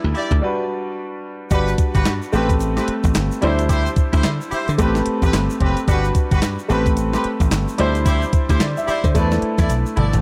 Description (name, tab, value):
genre	R&B, new jack swing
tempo	110 BPM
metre	4/4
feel	swing 60% on 16ths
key	A dorian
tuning	A4 = 440 Hz
part	clear concert grand piano	accompaniment	0.0-10.2 s	G3 to E5	-25 LUFS	equal	none
part	dry thumbed slap bass	bass	0.0-10.2 s	F#1 to D3	-23 LUFS	equal	none
part	clear horn section	stabs	0.1-10.2 s	C4 to D5	-28 LUFS	equal	none
part	clean 12-bit digital drum machine	drums	0.1-10.2 s	handclaps, hi-hat, kick drum, snare drum, toms	-22 LUFS	equal	none
part	tube shaker	percussion	1.5-10.2 s	none	-43 LUFS	equal	none
room	light reverb, studio reverb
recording	dark, warm production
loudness	-19 LUFS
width	mono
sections	0.0-1.5 A section; 1.5-10.2 B section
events	break 0.4-1.5; drum fill 9.7-10.2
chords	0.4 Gmaj7; 2.3 Am9; 3.4 D9sus4; 4.8 Am9; 5.9 Gmaj7; 6.7 Am9; 7.8 D9sus4; 9.1 E7sus4